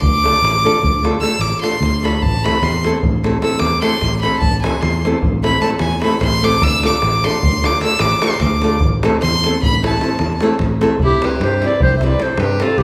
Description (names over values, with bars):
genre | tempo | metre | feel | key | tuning
balkan folk, Balkan wedding band | 300 BPM (eighths) | 11/8 | straight | A minor | A4 = 440 Hz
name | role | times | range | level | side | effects
bright violin | second line | 0.0-12.8 s | E4 to E6 | -21 LUFS | equal | none
fingered electric bass | bass | 0.0-12.8 s | A1 to G2 | -22 LUFS | equal | none
davul | percussion | 0.0-12.8 s | none | -23 LUFS | equal | none
nylon-string guitar | accompaniment | 0.2-12.7 s | G3 to A4 | -22 LUFS | equal | none
mellow clarinet | melody | 11.0-12.8 s | G4 to E5 | -20 LUFS | equal | none
room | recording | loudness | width
wet recital hall reverb, RT60 1.5 s | recorded in a church or concert hall | -16 LUFS | mono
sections
0.0-11.0 A section; 11.0-12.8 B section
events
violin solo 0.0-11.0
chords
0.0 Dm; 2.2 Am; 6.6 Dm; 8.8 Am; 11.0 C